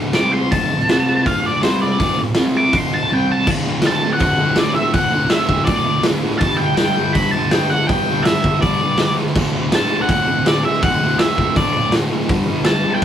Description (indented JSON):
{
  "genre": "garage rock duo or trio",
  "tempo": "163 BPM",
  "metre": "4/4",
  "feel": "straight",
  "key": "D mixolydian",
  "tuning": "A4 = 440 Hz",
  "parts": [
    { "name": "thick fuzz guitar", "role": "riff", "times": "0.0-13.0 s", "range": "D2 to C4", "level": "-19 LUFS", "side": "equal", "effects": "distortion" },
    { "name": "octave-fuzz lead guitar", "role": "melody", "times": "0.1-13.0 s", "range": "C5 to D6", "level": "-19 LUFS", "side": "equal", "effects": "distortion" },
    { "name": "raw garage drum kit", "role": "drums", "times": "0.1-13.0 s", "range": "crash cymbal, hi-hat, kick drum, snare drum", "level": "-19 LUFS", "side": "equal", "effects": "none" }
  ],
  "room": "moderate small room reverb, RT60 0.5 s",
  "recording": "rough rehearsal-room recording, tube saturation",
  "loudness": "-14 LUFS",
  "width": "side -9 dB against mid",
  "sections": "0.0-3.5 A section; 3.5-13.0 B section",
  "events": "lead electric guitar solo 0.0-3.5",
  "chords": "0.2 C5; 0.5 D5; 0.9 C5; 1.3 D5; 1.6 C5; 2.0 D5; 2.4 C5; 2.7 D5; 3.1 C5; 3.5 D; 6.4 G5; 9.4 D; 12.3 G5"
}